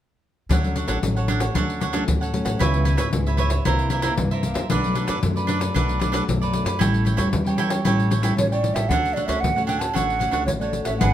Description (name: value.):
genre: samba and choro.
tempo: 114 BPM.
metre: 4/4.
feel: straight.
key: D major.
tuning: A4 = 440 Hz.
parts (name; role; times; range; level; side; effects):
cavaquinho; accompaniment; 0.5-11.1 s; D4 to G5; -26 LUFS; right 4 dB; none.
nylon-string guitar; accompaniment; 0.5-11.1 s; F#2 to B4; -26 LUFS; left 1 dB; none.
upright bass; bass; 0.5-11.1 s; G#1 to F#2; -24 LUFS; equal; none.
pandeiro; percussion; 0.5-11.1 s; none; -26 LUFS; left 3 dB; none.
breathy mellow concert flute; melody; 8.4-11.1 s; C#5 to A5; -24 LUFS; right 3 dB; none.
room: wet large studio reverb, RT60 0.8 s.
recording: band playing live in one room.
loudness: -19 LUFS.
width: side -11 dB against mid.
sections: 0.5-8.9 A section; 8.9-11.1 B section.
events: none.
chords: 0.5 Dmaj7; 2.6 C#m7; 3.7 C9; 4.7 Bm7; 6.8 A7; 8.9 Dmaj7.